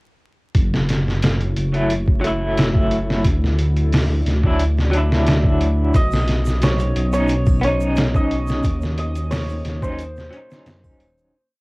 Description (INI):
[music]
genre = trip hop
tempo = 89 BPM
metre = 4/4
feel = straight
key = unclear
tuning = A4 = 440 Hz
[part]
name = dark analog pad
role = sustained chords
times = 1.4-11.3 s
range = A3 to D5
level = -29 LUFS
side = equal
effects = chorus, vintage 12-bit sampler grit
[part]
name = trip hop sampler-style drum kit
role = drums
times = 0.5-11.2 s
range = hi-hat, kick drum, snare drum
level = -20 LUFS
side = equal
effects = cassette tape
[part]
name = dark detuned saw bass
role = bass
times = 0.6-11.3 s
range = D#1 to F#2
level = -20 LUFS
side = equal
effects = none
[part]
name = electric guitar through a small old amp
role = accompaniment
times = 1.7-11.3 s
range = F#3 to E4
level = -23 LUFS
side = equal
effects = tremolo, tape echo
[part]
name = egg shaker and triangle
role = percussion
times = 5.9-11.3 s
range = none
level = -48 LUFS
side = right 6 dB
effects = none
[part]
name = santur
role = melody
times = 6.0-11.6 s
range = B#4 to D#5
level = -27 LUFS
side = right 1 dB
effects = cassette tape, tape echo
[sound]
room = light reverb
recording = home recording on cassette, vinyl crackle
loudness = -16 LUFS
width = side -24 dB against mid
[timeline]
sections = 0.6-11.3 groove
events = fade-out 7.7-11.3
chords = 0.6 F#m7; 3.2 Dadd9; 5.9 Badd9; 8.6 D#m7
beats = | 0.55 1.23 1.90 2.57 | 3.25 3.92 4.60 5.27 | 5.94 6.62 7.29 7.97 | 8.64 9.31 9.99 10.66